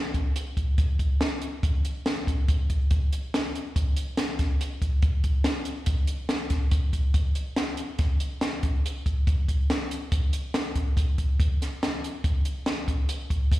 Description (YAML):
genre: rock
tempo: 142 BPM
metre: 5/4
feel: straight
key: none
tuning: none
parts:
  - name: compact cocktail drum kit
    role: drums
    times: 0.1-13.6 s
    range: hi-hat, kick drum, snare drum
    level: -24 LUFS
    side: equal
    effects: none
room: light reverb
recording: live gig heard through the venue's PA, recital hall reverb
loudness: -24 LUFS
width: side -16 dB against mid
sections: 0.0-13.6 A section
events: none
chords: none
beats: 0.35 | 0.78 1.21 1.63 2.05 2.48 | 2.90 3.33 3.75 4.18 4.60 | 5.03 5.45 5.87 6.30 6.72 | 7.15 7.57 8.00 8.42 8.84 | 9.27 9.69 10.11 10.54 10.96 | 11.39 11.81 12.23 12.66 13.08 | 13.50